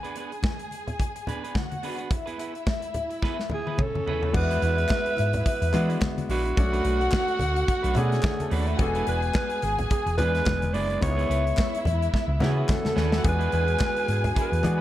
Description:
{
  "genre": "disco",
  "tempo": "108 BPM",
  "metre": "4/4",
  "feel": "swing 56% on 16ths",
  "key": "unclear",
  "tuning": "A4 = 440 Hz",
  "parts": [
    { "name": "dark studio string section", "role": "second line", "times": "0.0-14.8 s", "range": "A3 to G#5", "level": "-32 LUFS", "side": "left 3 dB", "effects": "none" },
    { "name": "clean electric guitar", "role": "accompaniment", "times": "0.0-14.8 s", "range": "G#3 to B4", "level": "-36 LUFS", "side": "right 6 dB", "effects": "none" },
    { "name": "modern studio drum kit", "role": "drums", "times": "0.0-14.8 s", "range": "crash cymbal, hi-hat, kick drum, snare drum, toms", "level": "-28 LUFS", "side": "equal", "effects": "none" },
    { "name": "congas", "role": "percussion", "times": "0.4-14.8 s", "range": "none", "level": "-34 LUFS", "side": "left 2 dB", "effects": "none" },
    { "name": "breathy alto saxophone", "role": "melody", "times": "3.5-14.8 s", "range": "F#4 to D5", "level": "-28 LUFS", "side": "right 2 dB", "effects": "none" },
    { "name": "clear baby grand piano", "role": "accompaniment", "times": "4.3-14.8 s", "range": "E3 to G#4", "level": "-32 LUFS", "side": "left 4 dB", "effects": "none" },
    { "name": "hollow-body short-scale fingered electric bass", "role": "bass", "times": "4.3-14.8 s", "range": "E1 to E3", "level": "-25 LUFS", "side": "equal", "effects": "none" },
    { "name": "group handclap", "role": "percussion", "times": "4.9-14.8 s", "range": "none", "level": "-42 LUFS", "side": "left 2 dB", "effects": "none" },
    { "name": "dark French horn section", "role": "sustained chords", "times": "13.2-14.8 s", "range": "D3 to G#4", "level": "-36 LUFS", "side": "left 2 dB", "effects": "none" }
  ],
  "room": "light reverb, small room reverb",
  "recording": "dark, warm production",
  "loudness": "-23 LUFS",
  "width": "side -13 dB against mid",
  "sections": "0.0-4.3 A section; 4.3-14.8 B section",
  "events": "drum fill 3.2-4.3, 12.1-13.2",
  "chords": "0.0 Bm6; 2.1 C#m7; 4.3 E7; 6.6 Bm7; 8.8 E7; 11.0 C#m7; 13.2 E7"
}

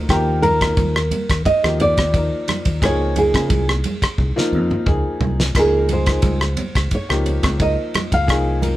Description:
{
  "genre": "electric jazz fusion",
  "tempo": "88 BPM",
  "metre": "4/4",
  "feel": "straight",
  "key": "unclear",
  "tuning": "A4 = 439 Hz",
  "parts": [
    { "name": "warm baby grand piano", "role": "accompaniment", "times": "0.0-8.8 s", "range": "F3 to Bb4", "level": "-24 LUFS", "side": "left 2 dB", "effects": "none" },
    { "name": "fingered electric bass", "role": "bass", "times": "0.0-8.8 s", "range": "C2 to Db3", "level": "-21 LUFS", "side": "equal", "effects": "none" },
    { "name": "nylon-string guitar", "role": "melody", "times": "0.1-8.8 s", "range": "G4 to F5", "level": "-20 LUFS", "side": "right 2 dB", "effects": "none" },
    { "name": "damped 70s drum kit", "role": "drums", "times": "0.1-8.8 s", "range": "kick drum, ride cymbal, rim click, snare drum, splash cymbal, toms", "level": "-21 LUFS", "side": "equal", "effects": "none" },
    { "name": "congas", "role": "percussion", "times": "0.4-8.8 s", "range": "none", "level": "-27 LUFS", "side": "right 3 dB", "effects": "none" }
  ],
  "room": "light reverb",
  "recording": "band playing live in one room",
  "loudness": "-16 LUFS",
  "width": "side -15 dB against mid",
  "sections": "0.0-8.8 A section",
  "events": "drum fill 4.2-5.5",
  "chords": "0.0 Ebmaj9; 2.8 Dbmaj9"
}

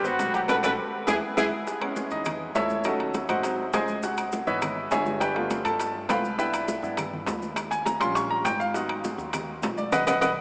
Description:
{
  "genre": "latin, salsa",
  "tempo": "204 BPM",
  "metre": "4/4",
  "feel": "straight",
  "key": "unclear",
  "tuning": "A4 = 441 Hz",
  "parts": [
    { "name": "warm trumpet", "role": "melody", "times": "0.0-1.4 s", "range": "F#4 to B4", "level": "-31 LUFS", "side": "equal", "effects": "none" },
    { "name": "bright baby grand piano", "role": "accompaniment", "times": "0.0-10.3 s", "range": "E3 to C#6", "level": "-26 LUFS", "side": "equal", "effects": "none" },
    { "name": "upright bass", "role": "bass", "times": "0.0-10.3 s", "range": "G1 to G2", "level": "-39 LUFS", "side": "equal", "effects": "none" },
    { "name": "bongos", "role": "percussion", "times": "0.0-10.3 s", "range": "none", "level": "-36 LUFS", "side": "equal", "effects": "none" },
    { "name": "congas", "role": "percussion", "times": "0.0-10.3 s", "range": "none", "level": "-36 LUFS", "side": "equal", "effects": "none" },
    { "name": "maracas", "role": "percussion", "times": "0.0-10.3 s", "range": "none", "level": "-44 LUFS", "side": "equal", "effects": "none" },
    { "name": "timbales", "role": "percussion", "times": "0.2-10.3 s", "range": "none", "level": "-34 LUFS", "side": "equal", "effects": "none" },
    { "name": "claves", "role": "percussion", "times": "0.5-10.3 s", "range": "none", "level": "-37 LUFS", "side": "equal", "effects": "none" }
  ],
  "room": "wet cathedral reverb, RT60 6.4 s",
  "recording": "in a vast, echoing space, small speaker sound",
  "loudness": "-24 LUFS",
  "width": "side -31 dB against mid",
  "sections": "0.0-1.7 A section; 1.7-10.4 B section",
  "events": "band accent 0.5-1.7, 9.9-10.4; drum fill 1.2-1.7, 10.2; grand piano solo 1.7-10.4",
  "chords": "0.5 B5; 1.1 E; 1.7 Amaj7; 2.9 D#m7b5; 3.4 G#7; 4.0 C#m7; 5.2 G7; 6.4 Cmaj7; 7.6 D#7; 8.7 G#m7"
}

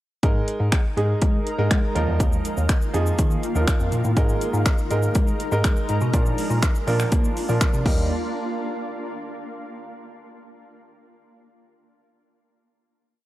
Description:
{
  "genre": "dance-pop",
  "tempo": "122 BPM",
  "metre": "4/4",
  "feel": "straight",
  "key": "unclear",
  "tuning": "A4 = 439 Hz",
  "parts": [
    { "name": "clear concert grand piano", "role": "accompaniment", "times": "0.2-8.1 s", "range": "F3 to Bb4", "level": "-28 LUFS", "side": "right 2 dB", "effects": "sidechain pumping" },
    { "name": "shimmering ambient pad", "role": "sustained chords", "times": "0.9-8.1 s", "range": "Eb3 to Bb4", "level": "-29 LUFS", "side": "equal", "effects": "chorus, built-in reverb, sidechain pumping" },
    { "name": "bell-like tine electric piano", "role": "bass", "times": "0.2-8.1 s", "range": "Eb2 to Bb3", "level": "-24 LUFS", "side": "equal", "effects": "phaser, sidechain pumping" },
    { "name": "pop drum kit", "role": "drums", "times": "0.2-8.0 s", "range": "crash cymbal, finger snaps, hi-hat, kick drum, shaker", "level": "-21 LUFS", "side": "equal", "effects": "overdrive" }
  ],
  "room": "digital ambience",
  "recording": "dry, gritty hardware recording",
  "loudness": "-19 LUFS",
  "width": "side -15 dB against mid",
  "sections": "0.2-8.1 pre-chorus; 8.1-10.1 final hit",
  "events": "none",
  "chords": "0.2 Absus2; 2.0 Ebsus2; 4.2 Absus2; 6.1 Bb; 7.9 Eb; 8.1 N.C."
}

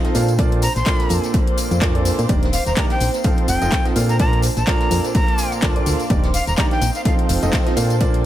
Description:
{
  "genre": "piano house",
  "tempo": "126 BPM",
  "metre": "4/4",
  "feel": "swing 57% on 16ths",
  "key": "Bb major",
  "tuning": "A4 = 438 Hz",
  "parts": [
    { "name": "dark chamber string section", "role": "sustained chords", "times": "0.0-8.3 s", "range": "C4 to C5", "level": "-29 LUFS", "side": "left 1 dB", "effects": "sidechain pumping" },
    { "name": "warm upright piano", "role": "riff", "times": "0.0-8.2 s", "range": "Bb2 to F5", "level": "-23 LUFS", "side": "right 3 dB", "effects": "sidechain pumping" },
    { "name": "house drum kit", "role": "drums", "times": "0.0-8.2 s", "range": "handclaps, hi-hat, tambourine", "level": "-27 LUFS", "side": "left 3 dB", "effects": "overdrive" },
    { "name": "open jazz drum kit", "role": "drums", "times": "0.0-8.1 s", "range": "hi-hat, snare drum", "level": "-35 LUFS", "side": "right 2 dB", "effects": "none" },
    { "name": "airy breathy pad", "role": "texture", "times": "0.1-8.3 s", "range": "Bb3 to D6", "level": "-31 LUFS", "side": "right 1 dB", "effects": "chorus, phaser, sidechain pumping" },
    { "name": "solid FM bass", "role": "bass", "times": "0.1-8.3 s", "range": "Eb1 to Bb2", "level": "-20 LUFS", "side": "equal", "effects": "sidechain pumping" },
    { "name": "tambourine", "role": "percussion", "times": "0.1-8.1 s", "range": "none", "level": "-34 LUFS", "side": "equal", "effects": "none" },
    { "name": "electronic kick drum", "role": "drums", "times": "0.4-8.1 s", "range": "none", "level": "-19 LUFS", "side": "equal", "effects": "none" },
    { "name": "breathy bright jazz flute", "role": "melody", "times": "0.6-7.1 s", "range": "F5 to C6", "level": "-25 LUFS", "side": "equal", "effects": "tape echo" }
  ],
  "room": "small room reverb",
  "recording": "none",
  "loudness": "-16 LUFS",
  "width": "side -13 dB against mid",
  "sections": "0.0-8.3 A section",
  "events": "none",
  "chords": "0.1 Bbmaj7; 2.3 Ebmaj7; 3.2 F7; 4.0 Bbmaj7; 6.1 Ebmaj7; 7.1 F7"
}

